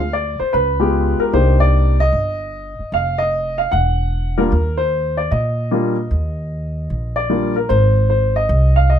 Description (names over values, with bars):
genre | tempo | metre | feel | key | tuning
jazz piano trio | 151 BPM | 4/4 | swing 66% on 8ths | Eb major | A4 = 440 Hz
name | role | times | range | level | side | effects
warm upright piano | melody | 0.0-9.0 s | G3 to F#5 | -18 LUFS | left 1 dB | none
upright bass | bass | 0.0-9.0 s | E1 to Bb2 | -18 LUFS | right 1 dB | none
room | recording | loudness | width
little or no reverb | close, detailed microphones | -15 LUFS | side -9 dB against mid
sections
0.0-7.7 A section; 7.7-9.0 B section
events
none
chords
0.0 Dm7; 0.5 Db7#11; 1.3 Cm9; 2.9 Ebsus2/F; 3.7 Esus2; 4.5 Ebmaj7(no3); 7.7 Ab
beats
0.14 0.53 0.93 | 1.33 1.73 2.12 2.52 | 2.92 3.32 3.72 4.12 | 4.51 4.91 5.31 5.71 | 6.11 6.50 6.90 7.30 | 7.70 8.10 8.49 8.89